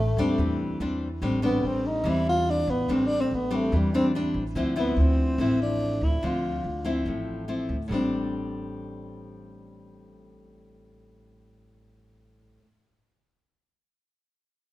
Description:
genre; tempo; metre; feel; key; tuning
bossa nova; 144 BPM; 4/4; straight; A minor; A4 = 440 Hz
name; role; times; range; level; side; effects
breathy tenor saxophone; melody; 0.0-6.9 s; G3 to F4; -27 LUFS; equal; none
breathy trombone; second line; 0.0-0.8 s; A3; -42 LUFS; right 3 dB; none
nylon-string guitar; accompaniment; 0.0-12.6 s; A2 to E4; -27 LUFS; left 1 dB; none
upright bass; bass; 0.0-12.6 s; A1 to E2; -29 LUFS; equal; none
room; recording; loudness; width
moderate large studio reverb, RT60 1.4 s; minimal, uncompressed stereo recording; -23 LUFS; side -16 dB against mid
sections
0.0-1.2 A section; 1.2-7.9 B section; 7.9-11.2 C section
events
tenor saxophone solo 1.2-7.9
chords
0.0 Am7; 4.5 Dm9; 7.9 Am7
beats
0.38 0.80 | 1.22 1.63 2.05 2.47 | 2.88 3.30 3.72 4.13 | 4.55 4.97 5.38 5.80 | 6.22 6.63 7.05 7.47 | 7.89 8.30 8.72 9.14 | 9.55 9.97 10.39 10.81

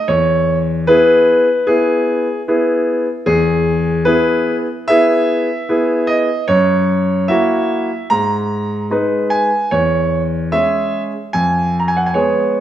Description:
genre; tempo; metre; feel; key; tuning
classical-period piano sonatina; 75 BPM; 4/4; straight; E major; A4 = 440 Hz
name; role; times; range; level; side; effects
bright concert grand piano; solo; 0.0-12.6 s; E2 to A#5; -13 LUFS; equal; none
room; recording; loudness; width
moderate recital hall reverb, RT60 1.5 s; none; -13 LUFS; side -11 dB against mid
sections
0.0-12.6 A section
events
none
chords
0.1 E; 6.5 F#7; 8.1 G#m; 9.7 C#m/E; 11.3 C#7/E#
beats
| 0.08 0.87 1.68 2.48 | 3.27 4.07 4.89 5.69 | 6.49 7.28 8.10 8.91 | 9.72 10.52 11.34 12.15

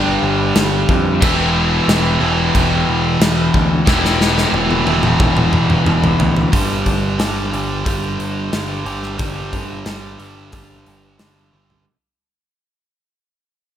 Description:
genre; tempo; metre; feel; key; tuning
hard rock; 90 BPM; 4/4; straight; G major; A4 = 440 Hz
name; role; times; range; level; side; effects
biting overdriven guitar; riff; 0.0-11.8 s; E2 to G3; -18 LUFS; equal; none
overdriven electric guitar; riff; 0.0-6.5 s; E3 to G4; -19 LUFS; equal; none
growling picked electric bass; bass; 0.0-11.9 s; E1 to F2; -22 LUFS; equal; overdrive
gated 80s drum kit; drums; 0.6-11.9 s; crash cymbal, hi-hat, kick drum, snare drum, toms; -18 LUFS; equal; none
room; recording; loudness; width
light reverb, studio reverb; none; -13 LUFS; side -10 dB against mid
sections
0.0-6.5 A section; 6.5-11.9 B section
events
drum fill 3.9-6.5, 11.5-11.9; fade-out 6.5-11.9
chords
0.0 G; 1.2 Em; 6.5 G5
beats
0.55 | 1.21 1.88 2.54 3.20 | 3.87 4.53 5.20 5.86 | 6.53 7.19 7.86 8.52 | 9.19 9.86 10.53 11.20

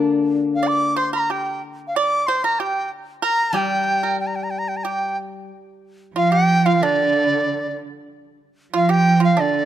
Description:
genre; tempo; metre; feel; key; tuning
chinese traditional, Chinese chamber ensemble; 93 BPM; 2/4; rubato; G yu mode; A4 = 436 Hz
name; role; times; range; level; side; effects
steel-string zither; accompaniment; 0.0-1.0, 3.5-5.5 s; D3 to D4; -23 LUFS; left 5 dB; none
bright reedy large dizi; melody; 0.6-9.7 s; D5 to D6; -20 LUFS; equal; none
pipa; second line; 0.6-9.7 s; D4 to D5; -24 LUFS; right 6 dB; none
rich cello; second line; 6.1-9.7 s; D3 to F3; -19 LUFS; right 4 dB; none
room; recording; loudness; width
light reverb; close, detailed microphones; -17 LUFS; side -11 dB against mid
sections
0.0-5.5 A section; 5.5-9.7 B section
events
none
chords
none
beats
| 0.30 0.96 | 1.61 2.26 | 2.90 3.54 | 4.19 4.84 | 5.50 6.15 | 6.80 7.45 | 8.09 8.73 | 9.37

